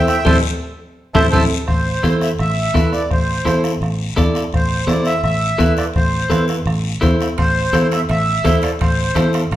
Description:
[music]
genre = latin, cumbia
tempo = 168 BPM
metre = 4/4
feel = straight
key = A minor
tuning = A4 = 439 Hz
[part]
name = accordion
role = melody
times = 0.0-9.3 s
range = C5 to A5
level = -20 LUFS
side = right 1 dB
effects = light tremolo tuning
[part]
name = clean electric guitar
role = accompaniment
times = 0.0-9.4 s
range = E4 to D5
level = -21 LUFS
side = equal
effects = none
[part]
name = fingered electric bass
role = bass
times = 0.0-9.6 s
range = A1 to E2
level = -19 LUFS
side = equal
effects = none
[part]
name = bombo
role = percussion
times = 0.1-9.6 s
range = none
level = -21 LUFS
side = left 1 dB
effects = none
[part]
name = guiro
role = percussion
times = 0.1-9.6 s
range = none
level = -31 LUFS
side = left 6 dB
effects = none
[part]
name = congas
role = percussion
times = 0.3-9.6 s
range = none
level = -26 LUFS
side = left 3 dB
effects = none
[part]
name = timbales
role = percussion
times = 0.3-1.4, 7.4-9.6 s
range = none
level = -25 LUFS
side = right 3 dB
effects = none
[sound]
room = wet large studio reverb, RT60 1.2 s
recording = heard from further back in the room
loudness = -14 LUFS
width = side -13 dB against mid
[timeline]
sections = 0.0-1.7 A section; 1.7-9.6 B section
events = accordion solo 0.0-1.7; drum fill 0.3-1.7; band accent 0.3-1.7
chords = 0.0 Am

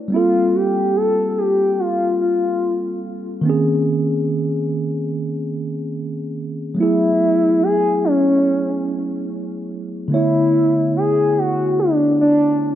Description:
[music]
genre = R&B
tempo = 72 BPM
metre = 4/4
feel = swing 54% on 16ths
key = unclear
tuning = A4 = 439 Hz
[part]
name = mellow tine electric piano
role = accompaniment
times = 0.0-12.8 s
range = D3 to C#5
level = -20 LUFS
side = right 1 dB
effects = slow stereo tremolo
[part]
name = gliding portamento lead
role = melody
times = 0.1-12.8 s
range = C#4 to A4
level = -17 LUFS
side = left 1 dB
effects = chorus, tape echo
[sound]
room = moderate plate reverb, RT60 3.6 s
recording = dark, warm production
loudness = -16 LUFS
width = side -11 dB against mid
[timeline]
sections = 0.0-12.8 A section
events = none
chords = 0.1 Gm11; 3.4 A#m11; 6.8 F#m11; 10.1 Bm11

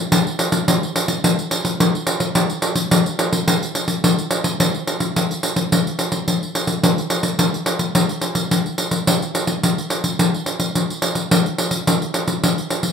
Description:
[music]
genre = samba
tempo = 107 BPM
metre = 4/4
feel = straight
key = none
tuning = none
[part]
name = pandeiro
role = percussion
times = 0.1-12.9 s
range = none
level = -17 LUFS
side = equal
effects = none
[sound]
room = wet studio reverb, RT60 0.8 s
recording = minimal, uncompressed stereo recording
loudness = -17 LUFS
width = side -7 dB against mid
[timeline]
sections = 0.0-4.6 A section; 4.6-12.9 B section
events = none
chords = none

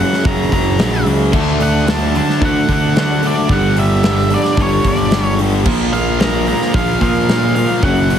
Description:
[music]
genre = quiet-loud alternative rock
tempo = 111 BPM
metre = 4/4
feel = straight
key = unclear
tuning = A4 = 442 Hz
[part]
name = octave-fuzz lead guitar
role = melody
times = 0.0-8.2 s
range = C#5 to A#5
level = -20 LUFS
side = right 1 dB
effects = distortion, slapback echo
[part]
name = fuzz guitar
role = riff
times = 0.0-8.2 s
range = F#2 to D4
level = -20 LUFS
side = right 10 dB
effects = distortion
[part]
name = tight distorted guitar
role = riff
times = 0.0-8.2 s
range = F#2 to D4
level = -21 LUFS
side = left 10 dB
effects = distortion
[part]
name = fuzz picked electric bass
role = bass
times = 0.0-8.2 s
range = F#1 to D3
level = -18 LUFS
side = equal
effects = overdrive
[part]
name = big rock drum kit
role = drums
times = 0.1-8.2 s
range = crash cymbal, hi-hat, kick drum, snare drum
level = -18 LUFS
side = left 1 dB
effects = none
[part]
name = crunchy overdriven guitar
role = riff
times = 1.3-8.2 s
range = F#2 to D4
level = -21 LUFS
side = left 1 dB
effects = none
[sound]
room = light reverb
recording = heavily compressed radio sound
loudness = -12 LUFS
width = side -9 dB against mid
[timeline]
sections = 0.0-8.2 A section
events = none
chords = 0.0 F#; 1.3 D5; 3.5 G5; 5.7 Bb5

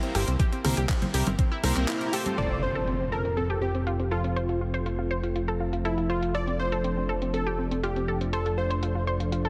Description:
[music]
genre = progressive house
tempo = 121 BPM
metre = 4/4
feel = straight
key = F major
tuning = A4 = 439 Hz
[part]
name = analog pluck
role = arpeggios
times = 0.0-9.5 s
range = C4 to C5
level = -36 LUFS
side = equal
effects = chorus, sidechain pumping, tape echo
[part]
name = chorused polysynth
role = stabs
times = 0.0-2.6 s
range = A3 to C5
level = -35 LUFS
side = equal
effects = sidechain pumping, tape echo
[part]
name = pop drum kit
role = drums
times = 0.0-9.4 s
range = crash cymbal, handclaps, hi-hat, rim click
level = -38 LUFS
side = equal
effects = overdrive, low-pass filter on hats, low-pass filter on snare, low-pass filter on cymbals, low-pass filter on room
[part]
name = fat analog bass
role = bass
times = 0.1-9.5 s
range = F1 to C2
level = -32 LUFS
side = equal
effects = sidechain pumping
[part]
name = electronic kick drum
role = drums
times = 0.4-1.5 s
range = none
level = -28 LUFS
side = equal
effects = overdrive
[part]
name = congas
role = percussion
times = 0.6-2.4 s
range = none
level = -36 LUFS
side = equal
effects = sidechain pumping on perc
[part]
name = plucky unison lead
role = melody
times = 1.9-9.5 s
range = E4 to D5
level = -33 LUFS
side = equal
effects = cassette tape, tape echo
[part]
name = lush unison pad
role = sustained chords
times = 2.4-9.5 s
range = F3 to D4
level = -35 LUFS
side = equal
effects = chorus, sidechain pumping
[part]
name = impact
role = sound effects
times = 2.4-4.4 s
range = none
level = -38 LUFS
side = equal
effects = none
[sound]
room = moderate lush hall reverb, RT60 2.7 s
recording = heavily compressed radio sound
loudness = -27 LUFS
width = mono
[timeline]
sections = 0.0-2.4 A section; 2.4-9.5 B section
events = break 1.9-2.4; impact 2.4-4.4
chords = 0.0 C7; 2.4 F

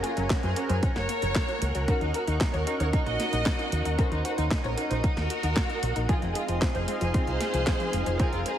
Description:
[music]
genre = italo disco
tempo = 114 BPM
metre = 4/4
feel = straight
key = unclear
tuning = A4 = 436 Hz
[part]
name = rich symphonic violin section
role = melody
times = 0.0-8.6 s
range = C4 to Eb5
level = -31 LUFS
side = equal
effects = digital delay
[part]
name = string machine, full ensemble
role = sustained chords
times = 0.0-8.6 s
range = Ab4 to Eb6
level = -35 LUFS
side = left 1 dB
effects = ensemble chorus
[part]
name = wide unison pluck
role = arpeggios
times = 0.0-8.6 s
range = F3 to Gb4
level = -37 LUFS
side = left 3 dB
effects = digital delay
[part]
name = chorused polysynth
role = stabs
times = 0.0-8.6 s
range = C4 to Db5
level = -35 LUFS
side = right 2 dB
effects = none
[part]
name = house drum kit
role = drums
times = 0.0-8.6 s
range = handclaps, hi-hat, snare drum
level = -33 LUFS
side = equal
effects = none
[part]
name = fingered electric bass with an envelope filter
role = bass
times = 0.2-8.4 s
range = F1 to Gb2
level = -29 LUFS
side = equal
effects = tube saturation
[part]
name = electronic kick drum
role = drums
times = 0.3-8.3 s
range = none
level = -27 LUFS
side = equal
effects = none
[sound]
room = light reverb, digital ambience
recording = heavily compressed radio sound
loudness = -24 LUFS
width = side -10 dB against mid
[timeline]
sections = 0.0-8.6 A section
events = none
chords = 0.0 Gbadd9; 1.9 Ebm7; 6.1 Fm7

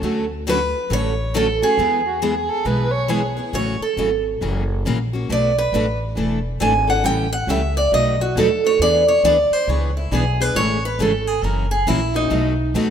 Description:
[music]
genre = acoustic string swing (jazz manouche)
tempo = 137 BPM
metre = 4/4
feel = swing 62% on 8ths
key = A major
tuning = A4 = 441 Hz
[part]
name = picked steel-string acoustic guitar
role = accompaniment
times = 0.0-12.9 s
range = B2 to A4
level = -25 LUFS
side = left 5 dB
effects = none
[part]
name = picked steel-string acoustic guitar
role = accompaniment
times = 0.0-12.9 s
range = B2 to B4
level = -27 LUFS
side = right 5 dB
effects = none
[part]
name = upright bass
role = bass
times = 0.0-12.9 s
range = E1 to E2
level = -23 LUFS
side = equal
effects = none
[part]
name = picked steel-string acoustic guitar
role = melody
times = 0.5-12.7 s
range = D#4 to G#5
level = -19 LUFS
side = right 2 dB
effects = none
[part]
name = dark violin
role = second line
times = 2.1-3.5 s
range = F#4 to C#5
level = -26 LUFS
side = right 2 dB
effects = slapback echo
[sound]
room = moderate lush hall reverb, RT60 2.4 s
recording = rough home demo mix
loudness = -17 LUFS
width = side -8 dB against mid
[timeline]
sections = 0.0-3.5 A section; 3.5-12.9 B section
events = steel-string acoustic guitar solo 3.5-12.9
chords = 0.0 Dmaj7; 1.8 E; 3.5 A6; 4.4 F#7; 5.3 Bm7; 6.2 E7sus4; 7.0 A7; 7.9 B7; 8.8 E7; 10.6 Amaj7; 11.4 F#7; 12.3 B7

